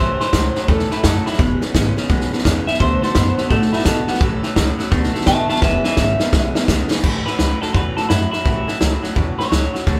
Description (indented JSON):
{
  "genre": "rockabilly",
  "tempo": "170 BPM",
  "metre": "4/4",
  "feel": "swing 64% on 8ths",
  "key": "A major",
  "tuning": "A4 = 441 Hz",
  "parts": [
    { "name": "electric guitar through a small old amp", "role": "melody", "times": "0.0-10.0 s", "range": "E4 to A5", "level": "-24 LUFS", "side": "equal", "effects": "phaser" },
    { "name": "picked acoustic archtop guitar", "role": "accompaniment", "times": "0.0-10.0 s", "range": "A2 to A4", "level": "-28 LUFS", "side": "equal", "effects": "none" },
    { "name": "twangy electric guitar", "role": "riff", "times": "0.0-10.0 s", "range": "E2 to B3", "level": "-28 LUFS", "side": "equal", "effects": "none" },
    { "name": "upright bass", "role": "bass", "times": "0.0-10.0 s", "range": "E1 to B2", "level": "-24 LUFS", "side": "equal", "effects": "none" },
    { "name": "vintage drum kit", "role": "drums", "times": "0.2-10.0 s", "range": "crash cymbal, hi-hat, kick drum, snare drum", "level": "-21 LUFS", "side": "equal", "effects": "none" }
  ],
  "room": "moderate stone room reverb, RT60 1.1 s",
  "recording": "band playing live in one room",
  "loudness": "-18 LUFS",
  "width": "mono",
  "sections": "0.0-7.0 A section; 7.0-10.0 B section",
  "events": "clean electric guitar solo 0.0-7.0; drum fill 5.6-7.0",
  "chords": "0.0 A6; 1.4 E6; 2.8 D6; 4.2 A6; 4.9 D6; 5.6 E6; 7.0 A6"
}